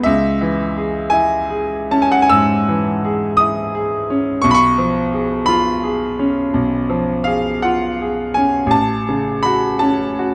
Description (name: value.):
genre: classical, romantic nocturne for solo piano.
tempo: 47-58 BPM (dotted quarters).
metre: 12/8.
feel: rubato.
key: C# minor.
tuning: A4 = 440 Hz.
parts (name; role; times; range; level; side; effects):
bright grand piano; solo; 0.0-10.3 s; A1 to E6; -17 LUFS; equal; none.
room: moderate large studio reverb, RT60 0.8 s.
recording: dark, warm production.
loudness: -17 LUFS.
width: mono.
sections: 0.0-10.3 A section.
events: none.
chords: 0.1 C#m; 4.5 C#7/B; 8.7 F#m/A.